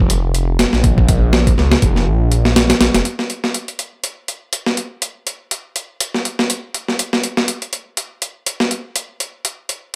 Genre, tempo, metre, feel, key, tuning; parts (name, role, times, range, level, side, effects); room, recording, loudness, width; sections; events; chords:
breakbeat, breaks; 122 BPM; 4/4; swing 56% on 16ths; A4 = 440 Hz
phased detuned saw bass; bass; 0.0-3.0 s; F1 to Db2; -18 LUFS; equal; phaser
breakbeat sampler-style drum kit; drums; 0.1-9.8 s; hi-hat, kick drum, snare drum; -18 LUFS; equal; overdrive, high-pass filter on kick, high-pass filter on hats, high-pass filter on snare, high-pass filter on room
little or no reverb; -18 LUFS; mono
0.0-3.1 A section; 3.1-10.0 B section